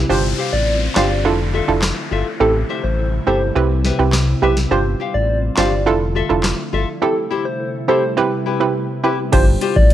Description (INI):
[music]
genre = dancehall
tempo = 104 BPM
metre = 4/4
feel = straight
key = unclear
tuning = A4 = 440 Hz
[part]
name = glassy FM pad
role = sustained chords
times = 0.0-9.9 s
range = C3 to F4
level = -25 LUFS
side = equal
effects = ensemble chorus, built-in reverb, sidechain pumping
[part]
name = round analog bass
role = bass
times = 0.0-9.9 s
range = F1 to C2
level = -19 LUFS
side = left 1 dB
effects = none
[part]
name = soft struck synth lead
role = melody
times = 0.1-9.9 s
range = G4 to D5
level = -22 LUFS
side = left 1 dB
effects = chorus, cassette tape, analog delay
[part]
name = hollow square pluck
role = accompaniment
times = 0.1-9.9 s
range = C4 to C5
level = -19 LUFS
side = right 6 dB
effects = chorus, sidechain pumping
[part]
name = downlifter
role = sound effects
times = 0.1-4.7 s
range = none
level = -29 LUFS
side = left 3 dB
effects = none
[part]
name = nylon-string guitar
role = arpeggios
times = 0.4-9.8 s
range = E4 to F5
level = -24 LUFS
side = left 8 dB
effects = analog delay
[part]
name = booming analog drum machine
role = drums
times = 1.0-9.9 s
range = crash cymbal, handclaps, hi-hat, kick drum, rim click, snare drum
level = -18 LUFS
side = left 1 dB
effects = cassette tape
[sound]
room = digital ambience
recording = home recording on cassette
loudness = -15 LUFS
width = side -12 dB against mid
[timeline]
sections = 0.1-9.3 A section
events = none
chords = 0.1 G7sus4; 1.3 Dmadd9/F; 2.4 Am7; 3.6 Cmaj7; 4.7 G7sus4; 5.9 Dmadd9/F; 7.0 Am7; 8.2 Cmaj7; 9.3 G7sus4